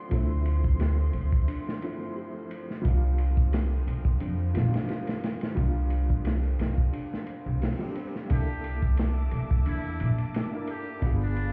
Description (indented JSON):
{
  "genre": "trip hop",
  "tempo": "88 BPM",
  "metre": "4/4",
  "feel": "swing 54% on 16ths",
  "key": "unclear",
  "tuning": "A4 = 440 Hz",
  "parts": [
    { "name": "dark upright piano", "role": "accompaniment", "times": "0.0-11.5 s", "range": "F3 to Bb4", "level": "-39 LUFS", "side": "equal", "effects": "tremolo, tape echo" },
    { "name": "dark studio string section", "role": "sustained chords", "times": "0.0-11.5 s", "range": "F3 to D6", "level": "-45 LUFS", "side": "equal", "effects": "vintage 12-bit sampler grit" },
    { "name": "music box", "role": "arpeggios", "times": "0.0-11.2 s", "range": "D4 to A4", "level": "-44 LUFS", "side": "equal", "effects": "tape echo" },
    { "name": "upright bass", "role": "bass", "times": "0.1-11.5 s", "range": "G1 to F2", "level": "-28 LUFS", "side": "equal", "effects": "none" },
    { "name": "crunchy breakbeat drum kit", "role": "drums", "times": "0.1-11.5 s", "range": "hi-hat, kick drum, ride cymbal, snare drum", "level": "-32 LUFS", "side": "equal", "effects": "none" },
    { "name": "swell", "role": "sound effects", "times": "7.3-8.3 s", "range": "none", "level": "-46 LUFS", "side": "equal", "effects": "none" },
    { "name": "trumpet with metal mute", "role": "melody", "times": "8.3-11.5 s", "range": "D4 to G4", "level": "-42 LUFS", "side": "equal", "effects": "tape echo" }
  ],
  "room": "small room ambience",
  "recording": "heard muffled through a wall, club reverb, vinyl crackle, EQ",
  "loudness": "-28 LUFS",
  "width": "mono",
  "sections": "0.0-8.3 A section; 8.3-11.5 B section",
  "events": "swell 7.3-8.3",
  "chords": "0.0 Dm7; 2.8 C7sus4; 8.3 C13; 11.0 G7b9"
}